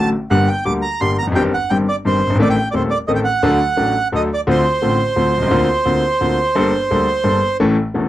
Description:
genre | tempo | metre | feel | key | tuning
tango | 173 BPM | 3/4 | rubato | D minor from 4.5 s | A4 = 439 Hz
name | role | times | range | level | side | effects
bandoneon | melody | 0.0-7.6 s | C5 to D6 | -18 LUFS | right 3 dB | none
bright concert grand piano | accompaniment | 0.0-8.1 s | Eb1 to A4 | -16 LUFS | left 2 dB | none
room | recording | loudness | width
little or no reverb | dry, close 1970s-style studio recording | -14 LUFS | side -14 dB against mid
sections
0.0-4.5 A section; 4.5-8.1 B section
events
none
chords
0.3 Gm; 1.4 Cm/G; 2.4 Adim; 3.4 D; 4.5 Dm7; 5.5 Bbadd9/D; 6.6 Gmadd9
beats
| 0.32 0.66 1.01 | 1.35 1.70 2.05 | 2.39 2.74 3.08 | 3.43 3.78 4.13 | 4.48 4.82 5.17 | 5.52 5.87 6.21 | 6.56 6.91 7.25 | 7.60 7.95

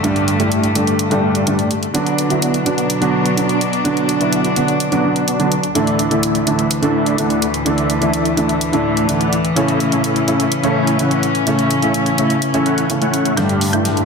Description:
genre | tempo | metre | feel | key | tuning
EDM, festival progressive house | 126 BPM | 4/4 | straight | D major | A4 = 440 Hz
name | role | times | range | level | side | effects
felt-muted upright piano | accompaniment | 0.0-14.1 s | G2 to E4 | -18 LUFS | right 2 dB | ping-pong delay
rich chamber string section | sustained chords | 0.0-14.1 s | D2 to D4 | -21 LUFS | left 2 dB | low-pass filter
dense compressed supersaw | riff | 0.0-14.0 s | A3 to A5 | -19 LUFS | equal | low-pass filter, ping-pong delay
big-room dance drum kit | drums | 0.0-14.1 s | hi-hat, snare drum | -24 LUFS | equal | none
wide unison pluck | arpeggios | 13.4-14.0 s | G6 | -27 LUFS | left 1 dB | ping-pong delay
room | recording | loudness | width
moderate digital room reverb, RT60 1.0 s | dense, heavily limited modern master | -14 LUFS | side -5 dB against mid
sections
0.0-13.4 A section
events
drum fill 13.4-14.1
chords
0.0 Gsus2; 1.9 Bm; 5.8 Dsus2; 9.6 A; 13.4 Gsus2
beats
| 0.04 0.52 0.99 1.47 | 1.95 2.42 2.90 3.37 | 3.85 4.33 4.80 5.28 | 5.75 6.23 6.71 7.18 | 7.66 8.14 8.61 9.09 | 9.56 10.04 10.52 10.99 | 11.47 11.95 12.42 12.90 | 13.37 13.85

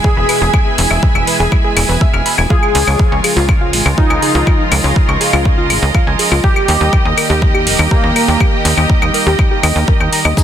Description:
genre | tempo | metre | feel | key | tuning
melodic techno | 122 BPM | 4/4 | straight | unclear | A4 = 440 Hz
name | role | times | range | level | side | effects
fat analog lead | melody | 0.0-10.4 s | A#3 to G#4 | -20 LUFS | equal | lush chorus, sidechain pumping, ping-pong delay
lush unison pad | sustained chords | 0.0-10.4 s | B2 to G4 | -22 LUFS | equal | chorus, sidechain pumping
soft round pluck | arpeggios | 0.0-10.4 s | E#4 to A#6 | -21 LUFS | left 1 dB | chorus, sidechain pumping, digital delay
electronic kick drum | drums | 0.0-10.4 s | none | -13 LUFS | equal | overdrive
clear symphonic string section | texture | 0.0-10.4 s | E#4 to B5 | -19 LUFS | right 3 dB | sidechain pumping
tight sequencer bass | bass | 0.2-10.3 s | D#1 to D#2 | -15 LUFS | equal | sidechain pumping
deep house drum kit | drums | 0.3-10.4 s | claves, crash cymbal, hi-hat, ride cymbal | -18 LUFS | left 2 dB | overdrive
maracas | percussion | 10.4 s | none | -20 LUFS | left 6 dB | none
room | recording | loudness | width
light reverb | dense, heavily limited modern master | -10 LUFS | side -10 dB against mid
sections
0.0-10.4 A section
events
none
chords
0.0 E; 2.5 C#; 6.4 D#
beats
0.04 | 0.54 1.03 1.52 2.01 | 2.50 3.00 3.49 3.98 | 4.47 4.96 5.45 5.95 | 6.44 6.93 7.42 7.91 | 8.40 8.90 9.39 9.88 | 10.37

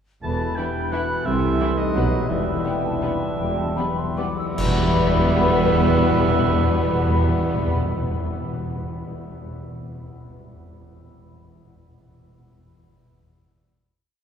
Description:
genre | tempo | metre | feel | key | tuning
classical, orchestral ballroom waltz | 141-187 BPM | 3/4 | rubato | E minor | A4 = 440 Hz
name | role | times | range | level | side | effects
mellow hollow large flute ensemble | second line | 0.2-7.8 s | G5 to E6 | -30 LUFS | left 2 dB | none
warm clarinet | second line | 0.2-7.8 s | A4 to B4 | -32 LUFS | left 1 dB | none
warm cor anglais | second line | 0.2-7.7 s | D#5 to A5 | -30 LUFS | right 4 dB | none
mellow bassoon | accompaniment | 0.2-7.7 s | E3 to G3 | -31 LUFS | equal | none
mellow French horn section | sustained chords | 0.2-7.8 s | D#4 to A4 | -30 LUFS | left 2 dB | none
concert harp | arpeggios | 0.2-8.6 s | B2 to E5 | -30 LUFS | left 4 dB | none
mellow tuba | bass | 0.2-7.8 s | E1 to C2 | -30 LUFS | right 2 dB | none
rich symphonic cello section | bass | 0.2-7.8 s | E2 to C3 | -30 LUFS | right 2 dB | none
rich symphonic double bass section | bass | 0.2-7.8 s | E1 to C2 | -29 LUFS | right 2 dB | none
timpani | percussion | 0.2-0.7, 4.6-8.3 s | E2 | -26 LUFS | equal | none
rich symphonic violin section | melody | 0.6-7.8 s | B3 to E4 | -30 LUFS | left 2 dB | none
rich symphonic violin section | second line | 0.6-7.8 s | A3 to B3 | -32 LUFS | left 2 dB | none
clear symphonic viola section | accompaniment | 0.6-7.8 s | E3 to G3 | -33 LUFS | right 3 dB | none
cymbal swell, clash cymbals and concert bass drum | percussion | 2.3-5.3 s | none | -31 LUFS | equal | none
room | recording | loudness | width
wet cathedral reverb, RT60 7.0 s | recorded in a church or concert hall, faint mains hum | -19 LUFS | side -8 dB against mid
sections
0.2-4.6 A section; 4.6-7.0 final chord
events
slowing down 1.8-4.6; band accent 4.6-5.0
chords
0.2 Em; 1.3 Am/C; 2.0 B; 2.3 Em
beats
| 0.23 0.57 0.93 | 1.27 1.60 1.96 | 2.30 2.65 3.02 | 3.39 3.77 4.18 | 4.58 4.97 5.38 | 5.78 6.18 6.60

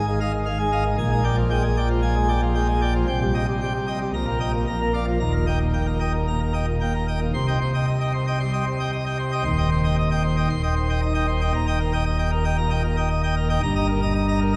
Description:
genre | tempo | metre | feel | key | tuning
classical, organ toccata | 114 BPM | 4/4 | straight | Eb major, C minor from 7.3 s | A4 = 441 Hz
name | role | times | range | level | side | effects
pipe organ, plenum | solo | 0.0-14.6 s | Eb1 to C6 | -23 LUFS | equal | none
room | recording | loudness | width
wet church reverb, RT60 3.7 s | none | -23 LUFS | mono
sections
0.0-7.3 A section; 7.3-14.6 B section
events
none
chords
0.0 Fm7/Ab; 1.0 Bb6; 3.1 Cm; 4.1 Eb/Bb; 4.7 Bb; 5.2 Eb; 7.3 Cm; 9.5 Cm/Eb; 11.5 Eb; 13.6 Eb/G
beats
0.46 | 0.98 1.51 2.03 2.56 | 3.08 3.61 4.13 4.66 | 5.20 5.74 6.28 6.81 | 7.34 7.87 8.40 8.93 | 9.45 9.98 10.50 11.02 | 11.55 12.07 12.59 13.11 | 13.63 14.15

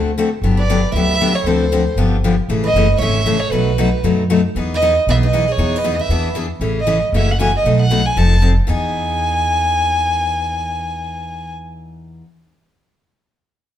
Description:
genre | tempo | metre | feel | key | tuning
acoustic string swing (jazz manouche) | 233 BPM | 4/4 | swing 56% on 8ths | E major | A4 = 440 Hz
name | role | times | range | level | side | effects
picked steel-string acoustic guitar | accompaniment | 0.0-12.2 s | B2 to A4 | -20 LUFS | left 4 dB | none
upright bass | bass | 0.0-12.2 s | F1 to F#2 | -19 LUFS | equal | none
warm violin | melody | 0.6-11.5 s | B4 to A5 | -19 LUFS | right 1 dB | none
picked steel-string acoustic guitar | second line | 0.6-6.4 s | F#4 to C#5 | -27 LUFS | right 3 dB | none
room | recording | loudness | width
moderate studio reverb, RT60 0.9 s | band playing live in one room | -14 LUFS | side -11 dB against mid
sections
0.0-6.6 A section; 6.6-8.7 B section; 8.7-10.7 C section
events
none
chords
0.4 Gmaj7; 1.5 Dm7; 2.0 G7; 2.5 Amaj9; 3.5 B7; 4.6 Emaj7; 6.1 E7; 6.6 Amaj7; 7.1 F#m7; 7.6 B7; 8.2 F7; 8.7 Emaj7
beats
0.17 | 0.43 0.69 0.94 1.20 | 1.46 1.72 1.98 2.23 | 2.49 2.75 3.00 3.26 | 3.52 3.78 4.04 4.29 | 4.55 4.81 5.07 5.32 | 5.58 5.84 6.10 6.35 | 6.61 6.87 7.13 7.38 | 7.64 7.90 8.16 8.42 | 8.67 8.93 9.19 9.45 | 9.71 9.96 10.22 10.48

